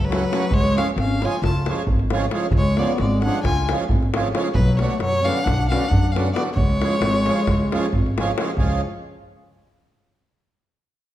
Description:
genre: balkan folk, Balkan wedding band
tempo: 268 BPM (eighths)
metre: 9/8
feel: straight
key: C# phrygian dominant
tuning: A4 = 439 Hz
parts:
  - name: clear violin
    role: melody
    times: 0.0-8.1 s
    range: B4 to A5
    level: -26 LUFS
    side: equal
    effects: none
  - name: mellow duduk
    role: second line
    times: 0.0-8.1 s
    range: F#3 to E#4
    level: -25 LUFS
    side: left 2 dB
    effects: none
  - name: upright bass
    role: bass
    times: 0.0-8.8 s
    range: G#1 to F#2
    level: -23 LUFS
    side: equal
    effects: none
  - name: davul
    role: percussion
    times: 0.0-8.8 s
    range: none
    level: -23 LUFS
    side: equal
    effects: none
  - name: accordion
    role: accompaniment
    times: 0.1-8.8 s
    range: C#3 to F#4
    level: -26 LUFS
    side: right 4 dB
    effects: none
room: wet recital hall reverb, RT60 1.5 s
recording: dark, warm production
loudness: -18 LUFS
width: side -13 dB against mid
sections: 0.0-8.6 A section; 8.6-10.6 B section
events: none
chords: 0.0 F#m; 0.5 C#; 4.6 Bm; 6.6 C#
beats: 0.07 0.29 | 0.52 0.74 0.96 1.19 1.41 1.64 1.86 2.09 2.31 | 2.54 2.76 2.98 3.21 3.43 3.65 3.88 4.10 4.33 | 4.55 4.77 5.00 5.22 5.45 5.67 5.89 6.12 6.34 | 6.57 6.79 7.01 7.24 7.46 7.68 7.91 8.13 8.36 | 8.58 8.80

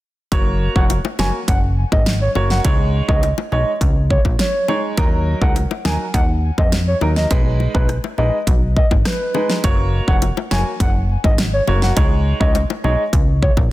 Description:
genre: dancehall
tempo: 103 BPM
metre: 4/4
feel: straight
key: unclear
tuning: A4 = 441 Hz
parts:
  - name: clear grand piano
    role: accompaniment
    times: 0.3-13.0 s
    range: Gb3 to Db5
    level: -24 LUFS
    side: right 2 dB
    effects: sidechain pumping
  - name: plucky analog bass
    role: bass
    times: 0.3-13.7 s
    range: F1 to F2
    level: -18 LUFS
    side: equal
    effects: none
  - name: pop drum kit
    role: drums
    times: 0.3-13.7 s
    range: hi-hat, kick drum, rim click, snare drum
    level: -18 LUFS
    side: equal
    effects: none
  - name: hollow clarinet-like synth lead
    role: melody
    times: 0.8-13.5 s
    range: B4 to Ab5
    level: -23 LUFS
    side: equal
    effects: chorus, ping-pong delay
  - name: bongos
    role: percussion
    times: 0.9-13.7 s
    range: none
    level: -26 LUFS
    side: left 8 dB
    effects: none
room: digital ambience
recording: dense, heavily limited modern master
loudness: -15 LUFS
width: side -17 dB against mid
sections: 0.3-13.7 A section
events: none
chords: 0.3 Gb; 2.6 Dbsus2; 5.0 Ebm; 7.3 B6; 9.6 Gb; 12.0 Dbsus2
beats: | 0.32 0.90 1.48 2.06 | 2.65 3.23 3.81 4.39 | 4.98 5.56 6.14 6.72 | 7.31 7.89 8.47 9.05 | 9.64 10.22 10.80 11.39 | 11.97 12.55 13.13

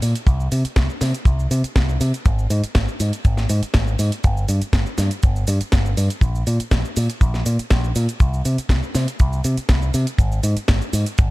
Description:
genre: nu-disco, nu disco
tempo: 121 BPM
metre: 4/4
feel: straight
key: unclear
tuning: A4 = 440 Hz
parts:
  - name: picked electric bass with an envelope filter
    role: bass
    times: 0.0-11.3 s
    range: G1 to C3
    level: -19 LUFS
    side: equal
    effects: none
  - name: house drum kit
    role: drums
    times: 0.0-11.3 s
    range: cabasa, hi-hat, snare drum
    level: -27 LUFS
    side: equal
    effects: none
  - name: kick drum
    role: drums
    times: 0.3-11.3 s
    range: none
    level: -16 LUFS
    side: equal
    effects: none
room: little or no reverb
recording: none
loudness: -17 LUFS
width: side -20 dB against mid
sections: 0.0-11.3 A section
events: none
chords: none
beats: | 0.27 0.77 1.26 1.76 | 2.25 2.75 3.25 3.74 | 4.24 4.73 5.23 5.72 | 6.22 6.72 7.21 7.71 | 8.21 8.70 9.20 9.69 | 10.19 10.68 11.18

